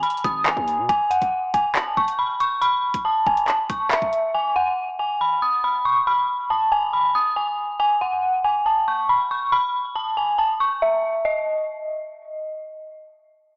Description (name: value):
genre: hip hop, drill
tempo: 139 BPM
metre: 4/4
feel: half-time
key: G# phrygian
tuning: A4 = 440 Hz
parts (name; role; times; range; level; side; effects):
- dark detuned synth bell; melody; 0.0-12.5 s; D#5 to D#6; -19 LUFS; equal; chorus, phaser, low-pass filter, cassette tape, analog delay
- drill drum kit; drums; 0.0-4.2 s; handclaps, hi-hat, kick drum; -25 LUFS; equal; vintage 12-bit sampler grit, cassette tape
- hard-hitting 808-style bass; bass; 0.2-0.9 s; G#1 to B2; -32 LUFS; equal; none
room: light reverb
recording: home recording on cassette, small speaker sound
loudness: -18 LUFS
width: side -37 dB against mid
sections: 0.0-11.2 A section; 11.2-13.6 B section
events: none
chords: 0.0 G#m; 0.9 N.C.